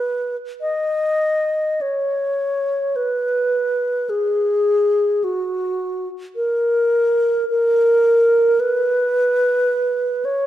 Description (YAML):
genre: classical, free, expressive piece for unaccompanied alto flute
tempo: free time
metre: none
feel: none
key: B major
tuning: A4 = 439 Hz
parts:
  - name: wooden-headed alto flute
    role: solo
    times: 0.0-10.5 s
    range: F#4 to D#5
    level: -17 LUFS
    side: equal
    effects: none
room: moderate scoring stage reverb, RT60 1.5 s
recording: none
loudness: -16 LUFS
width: side -12 dB against mid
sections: 0.0-10.5 A section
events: none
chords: none